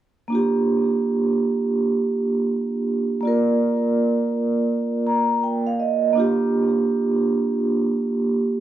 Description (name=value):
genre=hip hop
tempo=82 BPM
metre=4/4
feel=swing 65% on 16ths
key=unclear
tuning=A4 = 444 Hz
part: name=vibraphone with soft mallets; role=solo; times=0.3-8.6 s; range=Bb3 to Bb5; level=-19 LUFS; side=right 2 dB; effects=cassette tape
room=light reverb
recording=home recording on cassette, small room ambience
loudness=-19 LUFS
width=side -12 dB against mid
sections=0.3-8.6 A section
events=vibraphone fill 4.7-6.2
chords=0.3 Bb6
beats=| 0.31 1.04 1.78 2.51 | 3.24 3.97 4.70 5.43 | 6.17 6.90 7.63 8.36